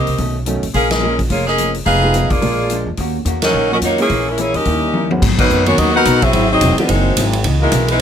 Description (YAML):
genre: jazz, big band swing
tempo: 214 BPM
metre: 4/4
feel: swing 60% on 8ths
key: unclear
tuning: A4 = 440 Hz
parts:
  - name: bright saxophone section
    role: melody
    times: 0.0-8.0 s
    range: Fb3 to F#5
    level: -16 LUFS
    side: equal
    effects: none
  - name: vintage hollow-body jazz guitar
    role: accompaniment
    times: 0.0-8.0 s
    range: G#2 to Ab4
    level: -24 LUFS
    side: left 3 dB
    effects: none
  - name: upright bass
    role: bass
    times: 0.0-8.0 s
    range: E1 to G#2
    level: -19 LUFS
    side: right 1 dB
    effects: none
  - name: swinging big-band drum kit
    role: drums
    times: 0.1-7.9 s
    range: crash cymbal, hi-hat, kick drum, ride cymbal, snare drum, toms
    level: -21 LUFS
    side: equal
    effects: none
  - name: warm baby grand piano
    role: accompaniment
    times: 0.5-6.9 s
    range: Ab2 to Gb4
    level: -21 LUFS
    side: right 2 dB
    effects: none
  - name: warm trombone section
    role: second line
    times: 4.6-8.0 s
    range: B2 to F#4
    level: -19 LUFS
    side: left 1 dB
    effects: none
room: little or no reverb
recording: close, detailed microphones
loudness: -13 LUFS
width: side -8 dB against mid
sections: 0.0-5.2 A section; 5.2-8.0 B section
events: band accent 0.9, 3.4, 5.4; drum fill 4.9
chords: 0.2 B9; 0.7 Bbm7; 1.9 Fm7b5; 2.4 Bb7; 3.0 Ebm7; 4.1 Bbm7b5; 4.7 Eb7b9; 5.2 G#m11; 6.3 G#7b13; 7.5 C#m9